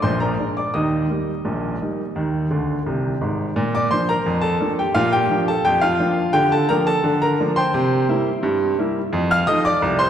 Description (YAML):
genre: ragtime piano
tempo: 86 BPM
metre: 2/4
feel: straight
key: Eb major, Bb major from 3.6 s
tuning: A4 = 439 Hz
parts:
  - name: clear baby grand piano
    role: solo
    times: 0.0-10.1 s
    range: Ab1 to F6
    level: -17 LUFS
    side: equal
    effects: none
room: wet concert hall reverb, RT60 2.6 s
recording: recorded in a church or concert hall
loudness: -18 LUFS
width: side -9 dB against mid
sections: 0.0-3.6 A section; 3.6-10.1 B section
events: grand piano fill 2.5-3.6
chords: 0.0 Bb7; 0.7 Eb; 3.6 Bb; 6.3 Bb/D; 7.7 C7; 9.1 F7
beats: 0.04 | 0.74 1.45 | 2.15 2.85 | 3.56 4.26 | 4.96 5.66 | 6.35 7.04 | 7.74 8.43 | 9.12 9.82